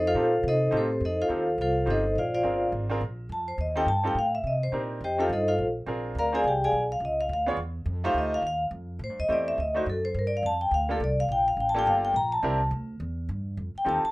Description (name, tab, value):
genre	jazz, small-group swing and bop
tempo	210 BPM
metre	4/4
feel	swing 62% on 8ths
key	F mixolydian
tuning	A4 = 443 Hz
part	vibraphone with medium hard mallets	melody	0.0-14.1 s	C4 to Bb5	-25 LUFS	left 1 dB	none
part	upright bass	bass	0.0-14.1 s	G1 to C3	-31 LUFS	equal	none
part	bright upright piano	accompaniment	0.1-14.0 s	A3 to Db5	-31 LUFS	right 1 dB	none
room	moderate small room reverb, RT60 0.5 s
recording	rough home demo mix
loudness	-24 LUFS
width	side -20 dB against mid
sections	0.0-1.0 A section; 1.0-14.1 A section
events	vibraphone solo 0.0-14.1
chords	0.0 F9; 2.2 Bb9; 3.3 F9; 4.4 Cm7; 5.0 F9; 5.6 Bb9; 6.7 Bdim; 7.9 F9; 9.0 Am7; 9.6 D7b9; 10.1 Gm7; 12.4 C9; 13.6 F9